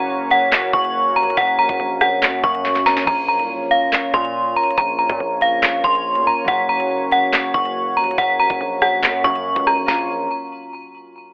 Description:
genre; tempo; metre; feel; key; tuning
hip hop, drill; 141 BPM; 4/4; half-time; Bb minor; A4 = 440 Hz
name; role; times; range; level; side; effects
metallic FM bell; melody; 0.0-10.1 s; F5 to Db6; -17 LUFS; equal; chorus, digital delay
concert harp; accompaniment; 0.0-10.1 s; F3 to Gb4; -30 LUFS; equal; none
warm analog pad; sustained chords; 0.0-10.1 s; Bb3 to Db5; -25 LUFS; equal; chorus
distorted 808-style bass; bass; 0.0-10.3 s; Gb1 to Bb2; -30 LUFS; equal; distortion
drill drum kit; drums; 0.3-10.0 s; crash cymbal, handclaps, hi-hat, kick drum, rim click, snare drum, toms; -19 LUFS; equal; none
room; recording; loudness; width
light reverb; telephone sound; -15 LUFS; side -27 dB against mid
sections
0.0-3.1 A section; 3.1-9.9 B section; 9.9-11.3 C section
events
drum fill 2.6-3.1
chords
0.0 Gb; 3.1 Bbm; 6.5 Gb; 9.9 Bbm

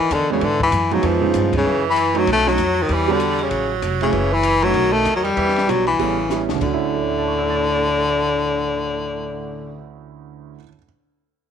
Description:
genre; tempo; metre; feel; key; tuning
jazz, small-group swing and bop; 194 BPM; 4/4; swing 61% on 8ths; D major; A4 = 439 Hz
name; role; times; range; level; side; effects
clear baritone saxophone; melody; 0.0-9.9 s; C#3 to A3; -19 LUFS; left 4 dB; none
bright tenor saxophone; second line; 0.0-9.8 s; A2 to G3; -26 LUFS; right 11 dB; tape echo
upright bass; bass; 0.1-10.5 s; F1 to G#2; -27 LUFS; equal; none
compact cocktail drum kit; drums; 0.1-9.0 s; crash cymbal, cymbal swell, hi-hat, kick drum, ride cymbal, rim click, snare drum; -31 LUFS; left 5 dB; none
warm concert grand piano; accompaniment; 0.3-10.8 s; D2 to A6; -24 LUFS; right 13 dB; none
room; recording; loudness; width
light reverb, small room ambience; 1960s-style stereo; -16 LUFS; side -8 dB against mid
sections
0.0-1.6 A section; 1.6-6.6 B section; 6.6-9.1 C section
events
band accent 1.5; drum fill 6.3-6.6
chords
0.4 G#m7; 1.0 C#7; 1.6 F#m7; 2.3 B7; 2.9 Em7; 3.5 A6; 4.1 F#m7; 4.7 B7; 5.4 Em7; 6.0 A9; 6.6 Dmaj9

